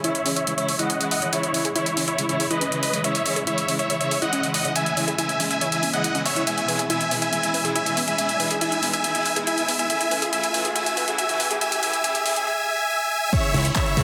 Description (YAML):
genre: uplifting trance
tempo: 140 BPM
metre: 4/4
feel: straight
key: C# minor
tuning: A4 = 440 Hz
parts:
  - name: big supersaw lead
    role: melody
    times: 0.0-14.0 s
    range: E4 to G#5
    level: -26 LUFS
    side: equal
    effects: sidechain pumping, low-pass filter, tape echo
  - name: warm studio string section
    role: sustained chords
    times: 0.0-14.0 s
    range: B2 to E4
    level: -32 LUFS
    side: equal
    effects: sidechain pumping
  - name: unison pluck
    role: arpeggios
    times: 0.0-12.3 s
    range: B3 to G#5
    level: -34 LUFS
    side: equal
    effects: sidechain pumping, tape echo
  - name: punchy analog drum machine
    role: drums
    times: 0.0-14.0 s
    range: crash cymbal, handclaps, hi-hat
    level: -28 LUFS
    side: equal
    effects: none
  - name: riser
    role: sound effects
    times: 3.9-12.5 s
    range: none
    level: -37 LUFS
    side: equal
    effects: none
  - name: plucky unison lead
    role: second line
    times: 13.3-14.0 s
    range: E5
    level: -38 LUFS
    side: equal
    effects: none
  - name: electronic kick drum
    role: drums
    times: 13.3-14.0 s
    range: none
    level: -25 LUFS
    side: equal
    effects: none
  - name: fat analog bass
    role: bass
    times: 13.5-14.0 s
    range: C#2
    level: -24 LUFS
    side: equal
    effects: tube saturation, sidechain pumping
room: wet huge ambient reverb, RT60 4.1 s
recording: dense, heavily limited modern master, high-pass filter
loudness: -23 LUFS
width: mono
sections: 0.0-13.3 A section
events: build-up 0.0-13.3; filter sweep on supersaw synth 0.0-13.3; filter sweep on synth pluck 0.0-13.3; riser 3.9-12.5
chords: 0.0 C#m; 6.5 E; 9.9 A; 13.3 C#m